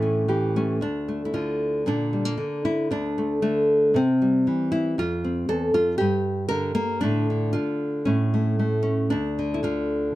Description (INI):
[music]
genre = folk, solo fingerstyle acoustic guitar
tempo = 115 BPM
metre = 4/4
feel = straight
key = D minor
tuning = A4 = 437 Hz
[part]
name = nylon-string guitar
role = solo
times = 0.0-10.2 s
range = D2 to Bb4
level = -21 LUFS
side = equal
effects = none
[sound]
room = moderate studio reverb, RT60 0.6 s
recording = dark, warm production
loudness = -21 LUFS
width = side -16 dB against mid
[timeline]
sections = 0.8-10.2 A section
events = none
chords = 0.0 A; 0.8 Dm; 1.9 Bb; 2.9 D5; 3.9 C; 5.0 F5; 6.0 Gm; 7.0 Dm/A; 8.1 N.C.